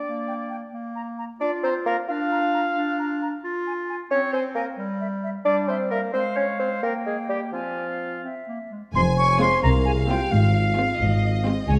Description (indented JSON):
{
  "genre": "cinematic, playful, whimsical film cue",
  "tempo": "88 BPM (dotted quarters)",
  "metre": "6/8",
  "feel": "straight",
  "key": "F minor from 3.4 s",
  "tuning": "A4 = 439 Hz",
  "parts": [
    { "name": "clear oboe", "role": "second line", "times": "0.0-8.2 s", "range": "F4 to F5", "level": "-32 LUFS", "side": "equal", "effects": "none" },
    { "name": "mellow bassoon", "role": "accompaniment", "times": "0.0-8.2 s", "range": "F3 to F4", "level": "-28 LUFS", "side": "equal", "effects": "none" },
    { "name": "bright clarinet", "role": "second line", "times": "0.1-8.8 s", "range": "G3 to F4", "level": "-32 LUFS", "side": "equal", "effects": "none" },
    { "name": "concert flute", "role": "second line", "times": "0.3-11.7 s", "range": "E5 to Db6", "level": "-30 LUFS", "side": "equal", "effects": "none" },
    { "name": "mellow tuba", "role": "bass", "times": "8.9-11.8 s", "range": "F1 to Db2", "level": "-29 LUFS", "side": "equal", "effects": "none" },
    { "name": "warm chamber cello section", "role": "bass", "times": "8.9-11.8 s", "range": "C2 to Ab2", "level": "-28 LUFS", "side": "equal", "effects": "none" },
    { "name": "vibraphone with soft mallets", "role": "melody", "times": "9.0-11.8 s", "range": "F4 to Db5", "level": "-31 LUFS", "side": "equal", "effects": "none" },
    { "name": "rich chamber violin section", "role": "second line", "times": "9.0-11.8 s", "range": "Db5 to Ab5", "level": "-34 LUFS", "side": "equal", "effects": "none" },
    { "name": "rich chamber double bass section", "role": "bass", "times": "9.0-11.8 s", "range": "F1 to Db2", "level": "-26 LUFS", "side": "equal", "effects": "none" },
    { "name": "rich chamber violin section", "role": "melody", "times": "9.4-11.6 s", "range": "F4", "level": "-37 LUFS", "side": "equal", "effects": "none" },
    { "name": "rich chamber viola section", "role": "accompaniment", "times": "9.4-11.6 s", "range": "Ab3 to C4", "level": "-31 LUFS", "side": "equal", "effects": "none" }
  ],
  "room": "moderate scoring stage reverb, RT60 1.7 s",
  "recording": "none",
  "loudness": "-24 LUFS",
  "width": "mono",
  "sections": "0.0-8.9 A section; 8.9-11.8 B section",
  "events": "none",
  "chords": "0.0 Gm/Bb (rootless); 0.7 Bb5; 2.1 Bb/D (rootless); 3.4 F5; 4.8 Gm; 6.1 Fm/Ab; 6.8 Gm; 7.5 Fm; 8.2 N.C.; 8.9 Fm; 10.3 Fm/Ab"
}